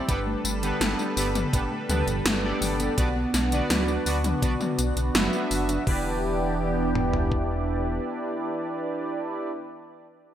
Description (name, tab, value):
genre	synthwave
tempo	83 BPM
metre	4/4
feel	straight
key	E minor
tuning	A4 = 440 Hz
part	analog string pad	sustained chords	0.0-9.5 s	E3 to B4	-29 LUFS	equal	ensemble chorus, sidechain pumping
part	soft round pluck	arpeggios	0.0-6.2 s	D3 to D4	-33 LUFS	left 1 dB	chorus, vintage 12-bit sampler grit, digital delay
part	analog synth brass	stabs	0.0-9.5 s	B3 to E5	-30 LUFS	right 1 dB	chorus, digital delay
part	dark detuned saw bass	bass	0.1-8.0 s	E1 to D2	-29 LUFS	equal	none
part	80s electronic pad drums	drums	0.1-6.0 s	crash cymbal, hi-hat, snare drum, tambourine, toms	-28 LUFS	equal	gated reverb on snare and toms, overdrive, gated reverb
part	clean 12-bit digital drum machine	drums	0.1-7.5 s	kick drum, toms	-27 LUFS	equal	none
room	wet plate reverb, RT60 1.7 s, digital ambience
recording	bright 1980s-style digital production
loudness	-23 LUFS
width	side -10 dB against mid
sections	0.0-5.9 A section; 5.9-8.8 B section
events	none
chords	0.1 Gadd9; 3.0 Bm; 5.9 Em7